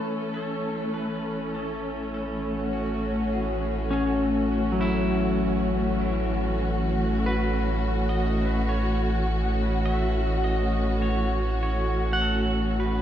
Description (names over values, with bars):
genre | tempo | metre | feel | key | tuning
ambient | 50 BPM | 4/4 | straight | A major | A4 = 440 Hz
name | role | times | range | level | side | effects
pedal steel guitar | melody | 0.0-13.0 s | F#4 to E5 | -39 LUFS | left 1 dB | dub echo
dark studio string section | sustained chords | 0.0-13.0 s | E3 to A4 | -26 LUFS | equal | none
warm sub bass | bass | 0.0-13.0 s | A1 | -28 LUFS | equal | none
clean electric guitar | arpeggios | 3.9-13.0 s | F#3 to F#5 | -28 LUFS | left 2 dB | dub echo
room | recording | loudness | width
wet echo chamber reverb, RT60 2.1 s | echo-heavy mix | -23 LUFS | side -10 dB against mid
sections
0.0-13.0 A section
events
fade-in on pedal steel guitar 0.0-13.0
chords
0.0 A6